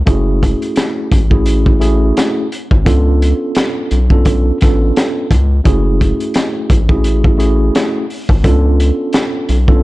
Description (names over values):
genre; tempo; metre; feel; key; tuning
hip hop, boom-bap hip-hop; 86 BPM; 4/4; swing 56% on 16ths; F# minor; A4 = 440 Hz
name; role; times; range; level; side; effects
round analog bass; bass; 0.0-9.8 s; F#1 to C#2; -13 LUFS; equal; none
mellow tine electric piano; accompaniment; 0.1-9.8 s; A3 to A4; -17 LUFS; right 1 dB; medium stereo tremolo, high-pass filter, low-pass filter
crunchy breakbeat drum kit; drums; 0.1-9.8 s; hi-hat, kick drum, snare drum; -14 LUFS; equal; vintage 12-bit sampler grit
room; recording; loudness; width
small room ambience; dark, warm production; -11 LUFS; side -18 dB against mid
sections
0.0-9.8 A section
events
none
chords
0.1 F#m9; 2.9 C#7b9b13; 5.7 F#m9; 8.4 C#7b9b13